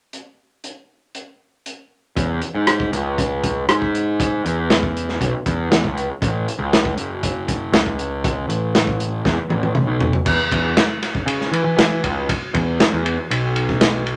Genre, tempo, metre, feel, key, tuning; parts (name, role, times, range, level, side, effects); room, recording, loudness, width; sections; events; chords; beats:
psychedelic rock; 118 BPM; 4/4; straight; E major; A4 = 441 Hz
crunchy breakbeat drum kit; drums; 0.1-14.2 s; crash cymbal, hi-hat, kick drum, ride cymbal, rim click, snare drum, toms; -21 LUFS; equal
fuzz picked electric bass; bass; 2.2-14.2 s; F#1 to E3; -23 LUFS; equal; overdrive
moderate studio reverb, RT60 0.5 s; -20 LUFS; mono
0.1-2.2 A section; 2.2-10.3 B section; 10.3-14.2 C section
drum fill 9.3-10.3
| 0.13 0.64 1.15 1.65 | 2.16 2.67 3.18 3.69 | 4.19 4.70 5.21 5.71 | 6.22 6.72 7.23 7.74 | 8.24 8.75 9.25 9.76 | 10.27 10.77 11.28 11.79 | 12.29 12.80 13.31 13.82